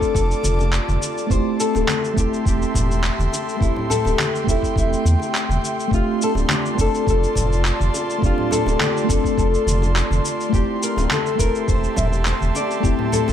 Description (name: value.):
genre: sunset chillout.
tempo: 104 BPM.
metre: 4/4.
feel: swing 53% on 16ths.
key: unclear.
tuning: A4 = 439 Hz.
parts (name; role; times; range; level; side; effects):
nylon-string guitar; melody; 0.0-13.3 s; E4 to E5; -25 LUFS; left 4 dB; tape echo, shimmer reverb.
mellow FM electric piano; accompaniment; 0.0-13.3 s; A3 to A4; -25 LUFS; moving between left 5 dB and right 4 dB; chorus, phaser, auto-pan, digital delay.
airy breathy pad; sustained chords; 0.0-13.3 s; F4 to D6; -27 LUFS; right 2 dB; chorus, shimmer reverb.
electronic cabasa and handclaps; drums; 0.0-13.3 s; none; -25 LUFS; equal; none.
electronic kick drum; drums; 0.0-13.0 s; none; -22 LUFS; equal; none.
round analog bass; bass; 0.1-13.3 s; D1 to E2; -21 LUFS; equal; none.
congas and bongos; percussion; 0.4-13.3 s; none; -29 LUFS; left 2 dB; none.
room: light reverb, digital ambience.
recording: none.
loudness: -17 LUFS.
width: side -10 dB against mid.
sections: 0.0-13.3 A section.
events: none.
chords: 0.0 F6; 1.3 Am7; 5.9 F6; 10.5 Am7.